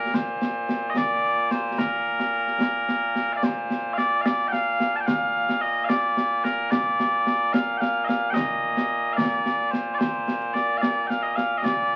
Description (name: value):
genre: scottish traditional, Scottish pipe music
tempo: 73 BPM (dotted quarters)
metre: 6/8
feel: straight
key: Bb major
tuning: A4 = 441 Hz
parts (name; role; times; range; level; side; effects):
- mellow small bagpipes; melody; 0.0-12.0 s; Bb2 to A5; -25 LUFS; equal; none
- concert snare drum and concert bass drum; drums; 0.1-11.8 s; none; -28 LUFS; equal; none
room: wet studio reverb, RT60 0.8 s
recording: very old 78 rpm record, vinyl crackle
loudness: -24 LUFS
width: mono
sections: 0.0-3.4 A section; 3.4-12.0 B section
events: none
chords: none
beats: | 0.14 0.96 | 1.78 2.60 | 3.43 4.25 | 5.07 5.89 | 6.71 7.54 | 8.36 9.18 | 10.00 10.82 | 11.65